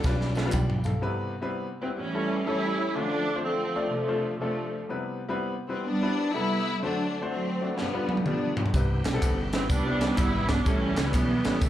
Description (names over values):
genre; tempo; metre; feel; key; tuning
uptempo gospel; 124 BPM; 4/4; swing 65% on 8ths; C major; A4 = 439 Hz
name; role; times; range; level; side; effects
clear concert grand piano; accompaniment; 0.0-11.6 s; G2 to G5; -32 LUFS; left 2 dB; slapback echo
warm studio string section; sustained chords; 0.0-1.0 s; F5 to D6; -47 LUFS; right 1 dB; none
fingered electric bass; bass; 0.0-0.9, 8.7-11.7 s; G1 to C#2; -30 LUFS; equal; none
crisp fusion drum kit; drums; 0.0-1.0, 7.8-11.7 s; kick drum, ride cymbal, snare drum, toms; -27 LUFS; equal; none
tambourine and handclaps; percussion; 0.0-0.9, 8.7-11.7 s; none; -42 LUFS; right 2 dB; slapback echo
bright tonewheel organ; sustained chords; 0.4-0.5, 8.7-11.7 s; C3 to G4; -37 LUFS; right 3 dB; none
rich studio string section; melody; 1.8-11.7 s; C3 to E4; -27 LUFS; right 1 dB; none
room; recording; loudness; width
light reverb, small room ambience; live gig heard through the venue's PA, club reverb; -25 LUFS; side -12 dB against mid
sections
0.0-1.0 A section; 1.0-11.7 B section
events
drum fill 0.0-1.0, 7.8-8.7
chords
0.0 G7; 1.0 Cmaj7; 2.0 A7; 3.0 Dm7; 4.9 Cmaj7; 6.8 D7; 7.8 G7; 8.7 Cmaj7; 10.7 A7